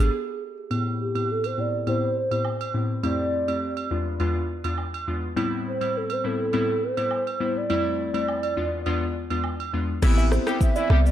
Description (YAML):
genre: afrobeats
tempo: 103 BPM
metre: 4/4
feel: straight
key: A minor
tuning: A4 = 440 Hz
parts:
  - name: hollow clarinet-like synth lead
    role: melody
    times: 0.0-11.1 s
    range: G4 to E5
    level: -28 LUFS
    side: right 1 dB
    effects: chorus, low-pass filter, ping-pong delay
  - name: glassy digital keys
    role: accompaniment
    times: 0.0-11.1 s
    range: E2 to G#4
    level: -26 LUFS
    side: left 2 dB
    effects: chorus, low-pass filter
  - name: clean 808-style bass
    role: bass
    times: 0.0-0.1, 10.0-11.1 s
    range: A1 to C2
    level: -18 LUFS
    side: equal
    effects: none
  - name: agogo bells and woodblock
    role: percussion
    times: 0.7-9.7 s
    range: none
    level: -33 LUFS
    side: right 7 dB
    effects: none
  - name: clear horn section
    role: second line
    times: 10.0-11.0 s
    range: E3 to G4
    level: -29 LUFS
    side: left 1 dB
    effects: ping-pong delay
  - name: afro-pop drum kit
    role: drums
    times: 10.0-11.1 s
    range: crash cymbal, kick drum, rim click, shaker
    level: -24 LUFS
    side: equal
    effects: none
  - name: kalimba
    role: riff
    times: 10.2-11.0 s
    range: C5 to E5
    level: -33 LUFS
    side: right 10 dB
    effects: none
room: light reverb, digital ambience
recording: dark, warm production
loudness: -23 LUFS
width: side -11 dB against mid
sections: 0.7-10.0 A section; 10.0-11.1 B section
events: break 0.1-0.7; filter sweep 0.7-10.0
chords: 0.0 E7b9 (rootless); 0.7 Am9; 3.0 Fmaj7; 3.9 E7b9; 5.4 Am9; 7.7 Fmaj7; 8.6 E7b9; 10.0 Am9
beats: 0.12 | 0.71 1.29 1.87 2.45 | 3.04 3.62 4.20 4.78 | 5.37 5.95 6.53 7.11 | 7.70 8.28 8.86 9.44 | 10.03 10.61